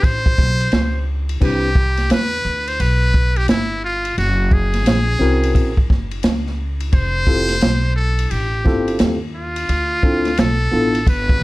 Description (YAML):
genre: hip hop, jazz-hop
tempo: 87 BPM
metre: 4/4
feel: swing 63% on 16ths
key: C major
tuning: A4 = 440 Hz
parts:
  - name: trumpet with metal mute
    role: melody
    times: 0.0-11.4 s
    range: E4 to C5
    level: -21 LUFS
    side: equal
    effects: none
  - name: upright bass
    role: bass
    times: 0.0-11.4 s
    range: F1 to E2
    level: -20 LUFS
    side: equal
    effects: none
  - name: open jazz drum kit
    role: drums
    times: 0.0-11.4 s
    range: crash cymbal, hi-hat, kick drum, ride cymbal, snare drum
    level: -18 LUFS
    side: equal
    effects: none
  - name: tine electric piano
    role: accompaniment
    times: 1.4-11.0 s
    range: B3 to B4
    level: -20 LUFS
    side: left 2 dB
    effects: medium stereo tremolo, plate reverb
room: light reverb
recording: dark, warm production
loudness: -15 LUFS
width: side -19 dB against mid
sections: 0.0-1.4 A section; 1.4-11.4 A section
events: none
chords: 0.0 Cmaj7(no3); 1.4 Cmaj9; 4.2 F#7#11; 6.9 Fmaj9; 9.7 Dm7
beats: 0.03 0.72 | 1.41 2.10 2.79 3.48 | 4.17 4.86 5.55 6.24 | 6.93 7.62 8.31 9.00 | 9.69 10.38 11.07